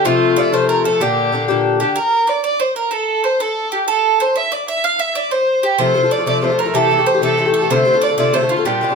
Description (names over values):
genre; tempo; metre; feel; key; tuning
celtic folk, Celtic jig; 126 BPM (dotted quarters); 6/8; straight; unclear; A4 = 440 Hz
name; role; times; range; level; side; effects
dark fiddle; melody; 0.0-8.9 s; F4 to F5; -16 LUFS; equal; none
bowl-back mandolin; second line; 0.0-8.9 s; F4 to F5; -21 LUFS; right 8 dB; none
Irish bouzouki; accompaniment; 0.0-2.0, 5.8-8.9 s; Bb2 to G4; -16 LUFS; left 4 dB; none
room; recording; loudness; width
moderate studio reverb, RT60 0.6 s; none; -14 LUFS; side -5 dB against mid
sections
0.0-2.0 A section; 2.0-8.9 B section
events
none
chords
0.1 F; 1.0 Gm; 2.0 N.C.; 5.8 F; 6.8 Am7; 7.7 F6